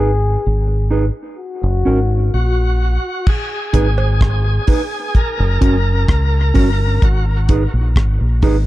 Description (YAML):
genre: dub reggae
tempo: 64 BPM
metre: 4/4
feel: straight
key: G# minor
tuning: A4 = 438 Hz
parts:
  - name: dark trombone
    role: second line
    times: 0.0-2.8 s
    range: F#4 to G#4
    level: -23 LUFS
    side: left 4 dB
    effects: dub echo
  - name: mellow electric guitar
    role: accompaniment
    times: 0.0-8.6 s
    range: C#4 to B4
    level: -21 LUFS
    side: right 3 dB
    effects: low-pass filter, dub echo
  - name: deep dub fingered electric bass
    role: bass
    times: 0.0-8.6 s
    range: F#1 to C#2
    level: -15 LUFS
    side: equal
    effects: none
  - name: overdriven tonewheel organ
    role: melody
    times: 2.3-7.3 s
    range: F#4 to A#4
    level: -23 LUFS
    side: equal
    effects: fast rotary speaker, dub echo
  - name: deep reggae drum kit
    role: drums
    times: 3.3-8.6 s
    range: crash cymbal, hi-hat, kick drum, rim click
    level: -15 LUFS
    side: equal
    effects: none
  - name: cowbell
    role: percussion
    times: 4.0-4.2 s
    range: none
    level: -29 LUFS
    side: right 6 dB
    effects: dub echo
room: small room reverb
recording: dark, warm production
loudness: -13 LUFS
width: side -16 dB against mid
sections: 0.0-3.3 A section; 3.3-8.7 B section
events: break 0.0-3.3; drums muted 2.3-3.3; part muted 3.3-8.7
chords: 0.0 G#m; 1.4 F#; 3.3 G#m; 5.1 F#; 7.0 G#m